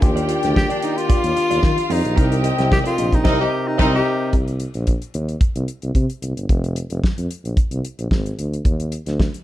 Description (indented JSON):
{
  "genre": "disco",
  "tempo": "111 BPM",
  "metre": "4/4",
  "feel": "straight",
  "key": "unclear",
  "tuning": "A4 = 440 Hz",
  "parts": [
    { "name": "breathy tenor saxophone", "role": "melody", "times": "0.0-4.3 s", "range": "Bb3 to G4", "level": "-22 LUFS", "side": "left 1 dB", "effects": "plate reverb" },
    { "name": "clear studio string section", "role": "second line", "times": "0.0-4.0 s", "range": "Eb4 to G5", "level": "-26 LUFS", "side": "left 2 dB", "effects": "slapback echo" },
    { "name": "barky tine electric piano", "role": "accompaniment", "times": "0.0-4.4 s", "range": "C3 to Bb4", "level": "-24 LUFS", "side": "left 2 dB", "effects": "none" },
    { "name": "clean electric guitar", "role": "accompaniment", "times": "0.0-4.0 s", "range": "F4 to Eb5", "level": "-30 LUFS", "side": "right 8 dB", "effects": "none" },
    { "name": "warm horn section", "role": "stabs", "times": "0.0-3.9 s", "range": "Bb3 to Eb5", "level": "-28 LUFS", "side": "left 2 dB", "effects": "none" },
    { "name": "warm tuba", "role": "bass", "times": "0.0-9.3 s", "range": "F1 to Eb3", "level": "-22 LUFS", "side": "equal", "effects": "none" },
    { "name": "damped 70s drum kit", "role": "drums", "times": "0.0-9.4 s", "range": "crash cymbal, hi-hat, kick drum, snare drum", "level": "-19 LUFS", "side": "equal", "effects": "none" }
  ],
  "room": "light reverb",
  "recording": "dark, warm production",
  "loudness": "-17 LUFS",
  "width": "side -14 dB against mid",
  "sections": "0.0-4.3 A section; 4.3-9.4 B section",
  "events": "tenor saxophone solo 0.0-4.3; band accent 3.3-4.3",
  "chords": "0.0 Ebmaj9; 2.2 Cm7; 4.3 N.C.; 6.5 Fmadd11; 8.7 Ebmaj7(no3)"
}